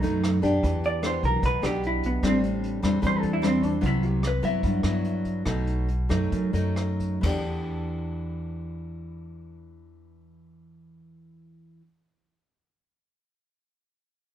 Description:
bossa nova; 127-150 BPM; 4/4; straight; E minor; A4 = 440 Hz
vintage hollow-body jazz guitar; melody; 0.0-5.4 s; B3 to E5; -28 LUFS; right 1 dB
nylon-string guitar; accompaniment; 0.0-11.9 s; F#2 to G4; -27 LUFS; left 1 dB
upright bass; bass; 0.0-11.8 s; A1 to G2; -29 LUFS; equal
vintage brush drum kit; drums; 0.0-7.3 s; crash cymbal, hi-hat, kick drum, rim click, toms; -33 LUFS; equal
moderate stone room reverb, RT60 1.4 s; band playing live in one room; -23 LUFS; side -10 dB against mid
0.6-7.2 A section; 7.2-11.0 B section
hollow-body jazz guitar solo 0.6-7.2; slowing down 3.8-7.2
0.0 B7; 0.6 Em7; 2.2 Am7; 3.8 Cmaj7#11; 5.5 B7; 7.2 Em7

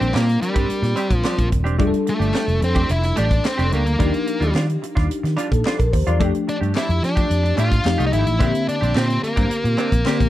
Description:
polished 1980s jazz-funk pop; 109 BPM; 4/4; straight; F major; A4 = 440 Hz
octave-fuzz lead guitar; melody; 0.0-10.3 s; G3 to F4; -23 LUFS; equal; distortion
bell-like FM electric piano; accompaniment; 0.0-10.3 s; D3 to D5; -25 LUFS; left 3 dB; phaser, ensemble chorus
semi-hollow electric guitar; riff; 0.0-10.2 s; G3 to G4; -28 LUFS; right 4 dB; lush chorus
fingered electric bass; bass; 0.0-10.3 s; Eb1 to F3; -20 LUFS; equal
tight funk drum kit; drums; 0.0-10.3 s; hi-hat, kick drum, snare drum; -22 LUFS; equal
group handclap; percussion; 0.1-10.2 s; -37 LUFS; left 8 dB
small room ambience; dry, close 1970s-style studio recording; -17 LUFS; side -14 dB against mid
0.0-10.3 A section
0.0 Bb69; 1.8 F69; 4.0 Ebmaj9; 6.2 F69; 7.9 F9; 8.4 Bb69

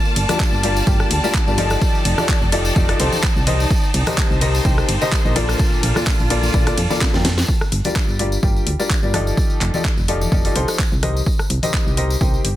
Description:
piano house; 127 BPM; 4/4; swing 55% on 16ths; G minor; A4 = 439 Hz
warm studio violin section; sustained chords; 0.0-7.5 s; A5; -27 LUFS; left 1 dB; sidechain pumping
clear studio string section; texture; 0.0-7.5 s; Bb3 to A5; -27 LUFS; equal; sidechain pumping
tambourine and congas; percussion; 0.1-12.4 s; -28 LUFS; left 3 dB
solid FM bass; bass; 0.2-12.5 s; F1 to F2; -21 LUFS; equal; sidechain pumping
garage drum kit; drums; 0.2-12.5 s; handclaps, hi-hat, ride cymbal, rim click, snare drum; -24 LUFS; equal; soft clipping on snare
clear upright piano; riff; 0.3-12.5 s; Bb2 to G5; -22 LUFS; left 2 dB; sidechain pumping, digital delay
electronic kick drum; drums; 0.4-12.3 s; -19 LUFS; equal; overdrive
small room ambience; dense, heavily limited modern master; -15 LUFS; side -14 dB against mid
0.0-7.5 A section; 7.5-12.6 B section
drop 0.0-7.5; drum fill 7.0-7.5
0.0 Gm7; 1.8 F13; 3.5 Cm7; 5.4 Bbmaj7; 7.5 Gm7; 9.4 F13; 11.0 Cm7

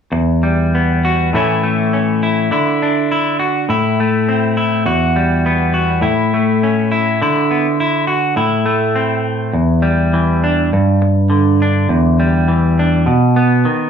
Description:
highlife; 102 BPM; 4/4; swing 54% on 16ths; E minor; A4 = 440 Hz
clean electric guitar; solo; 0.1-13.9 s; E2 to F#4; -12 LUFS; equal
light reverb; studio ambience; -12 LUFS; side -7 dB against mid
0.1-9.6 A section; 9.6-13.9 B section
0.1 Emadd9; 1.3 A; 2.5 Dadd9; 3.7 Am; 4.9 Emadd9; 6.0 A; 7.2 Dadd9; 8.4 Am; 9.6 Em7; 10.7 G5; 11.9 Em7; 13.1 B

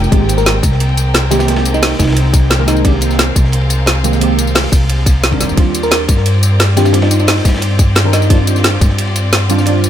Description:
liquid drum and bass; 176 BPM; 4/4; straight; A4 = 440 Hz
deep mellow chord stab; accompaniment; 0.0-9.9 s; Eb3 to D5; -18 LUFS; right 2 dB; chorus
bright studio string section; sustained chords; 0.0-9.9 s; Ab3 to G5; -23 LUFS; left 2 dB; sidechain pumping
upright bass; bass; 0.0-9.9 s; F1 to G2; -14 LUFS; equal
drum and bass drum kit; drums; 0.0-9.9 s; hi-hat, ride cymbal, snare drum, tambourine; -16 LUFS; equal
crunchy breakbeat drum kit; drums; 0.1-9.9 s; hi-hat, ride cymbal, snare drum; -24 LUFS; equal; high-pass filter on cymbals, high-pass filter on hats, high-pass filter on snare, high-pass filter on room
electronic kick drum; drums; 0.1-8.9 s; -11 LUFS; equal
bell-like FM electric piano; melody; 0.4-2.9, 5.8-8.4 s; Eb4 to Bb4; -19 LUFS; left 1 dB; chorus, phaser, ping-pong delay
light reverb, small room ambience; -10 LUFS; side -10 dB against mid
0.0-9.9 A section
0.1 Abmaj9; 5.4 Ebmaj13

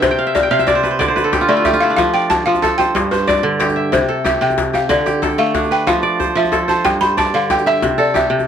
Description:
west african traditional, West African string and xylophone music; 123 BPM (dotted quarters); 12/8; straight; F lydian; A4 = 440 Hz
balafon; melody; 0.0-8.5 s; B4 to B5; -17 LUFS; left 1 dB; plate reverb
kora; arpeggios; 0.0-8.5 s; G2 to G5; -16 LUFS; right 2 dB
djembe; percussion; 0.0-8.5 s; -22 LUFS; left 5 dB
light reverb; -13 LUFS; side -8 dB against mid
0.0-8.5 A section
balafon solo 0.0-8.5; kora fill 0.1-2.0
0.0 C; 1.0 D5; 2.0 F; 3.0 G5; 3.9 C; 4.9 Dm; 5.9 F; 6.8 G5; 7.8 C

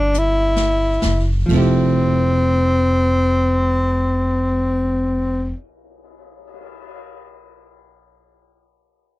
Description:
jazz ballad; 42 BPM; 4/4; swing 68% on 8ths; F major; A4 = 436 Hz
breathy tenor saxophone; melody; 0.0-5.5 s; C4 to E4; -18 LUFS; left 1 dB
vintage hollow-body jazz guitar; accompaniment; 0.0-5.6 s; F3 to A4; -23 LUFS; right 4 dB
upright bass; bass; 0.0-5.5 s; F1 to G1; -19 LUFS; equal
jazz brush drum kit; drums; 0.1-7.0 s; cymbal swell, hi-hat, kick drum, ride cymbal, snare drum; -30 LUFS; left 1 dB
little or no reverb; -15 LUFS; side -17 dB against mid
0.0-1.5 A section; 1.5-7.2 B section
slowing down 0.0-1.5; drum fill 0.1-1.5
0.0 C6 (rootless); 1.5 Fmaj9

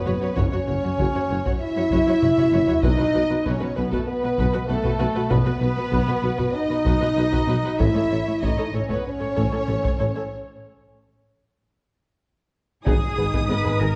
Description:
cinematic, epic orchestral film score; 96 BPM; 4/4; straight; A4 = 439 Hz
warm symphonic violin section; melody; 0.0-14.0 s; A4 to D#6; -35 LUFS; equal
dark symphonic violin section; second line; 0.0-13.9 s; D#4 to E5; -34 LUFS; equal
warm French horn section; sustained chords; 0.0-14.0 s; A3 to E4; -26 LUFS; equal
warm symphonic viola section; accompaniment; 0.1-13.9 s; B3 to C#5; -32 LUFS; equal
mellow tuba; bass; 0.1-13.9 s; F#1 to B1; -32 LUFS; equal
warm symphonic cello section; bass; 0.1-14.0 s; F#2 to B4; -32 LUFS; equal
warm symphonic double bass section; bass; 0.1-13.9 s; F#1 to B1; -30 LUFS; equal
taiko ensemble; drums; 0.4-13.9 s; -30 LUFS; equal
moderate scoring stage reverb, RT60 1.6 s; worn, warbling old tape, cassette tape, warbly pitch drift; -22 LUFS; mono
0.0-12.9 A section; 12.9-14.0 B section
drum fill 2.2-2.8; break 10.3-12.9
0.0 F#5; 2.8 B; 7.8 A; 10.3 N.C.; 12.9 G#m

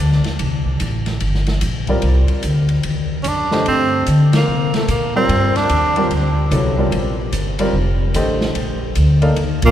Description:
modal jazz; 147 BPM; 4/4; swing 64% on 8ths; A4 = 440 Hz
upright bass; bass; 0.0-9.7 s; F1 to D3; -17 LUFS; equal
open jazz drum kit; drums; 0.1-9.7 s; hi-hat, kick drum, ride cymbal, snare drum; -25 LUFS; equal
warm baby grand piano; accompaniment; 1.9-9.4 s; D3 to F5; -22 LUFS; equal
warm tenor saxophone; melody; 3.2-6.1, 9.7 s; A3 to D4; -20 LUFS; right 1 dB
trombone with metal mute; second line; 9.6-9.7 s; Bb2; -12 LUFS; right 3 dB
wet cathedral reverb, RT60 5.2 s; recorded in a church or concert hall; -14 LUFS; side -11 dB against mid
0.0-9.7 A section
band accent 4.3
0.0 Cm9; 3.7 Ebadd9

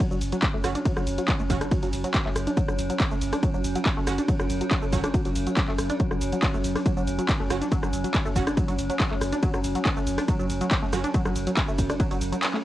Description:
driving peak-time techno; 140 BPM; 4/4; straight; A4 = 440 Hz
tight sequenced synth; riff; 0.0-12.6 s; F#3 to D4; -31 LUFS; equal; chorus, overdrive, sidechain pumping, analog delay
metallic inharmonic drone; drone; 0.0-12.6 s; F#3 to C#4; -30 LUFS; right 1 dB; chorus, built-in reverb, sidechain pumping
electronic kick drum; drums; 0.0-12.1 s; -25 LUFS; equal; overdrive, cassette tape
punchy analog drum machine; drums; 0.0-12.6 s; handclaps, hi-hat, ride cymbal, rim click, shaker; -30 LUFS; equal; cassette tape
saturated sub bass; bass; 0.1-12.3 s; F#1; -31 LUFS; equal; sidechain pumping, low-pass filter
rave stab; stabs; 0.6-11.0 s; F#3 to F#4; -34 LUFS; right 7 dB; chorus, built-in reverb, sidechain pumping, analog delay
light reverb; home recording on cassette; -22 LUFS; side -14 dB against mid
0.0-12.6 A section
kick drops out 12.4
0.0 F#5

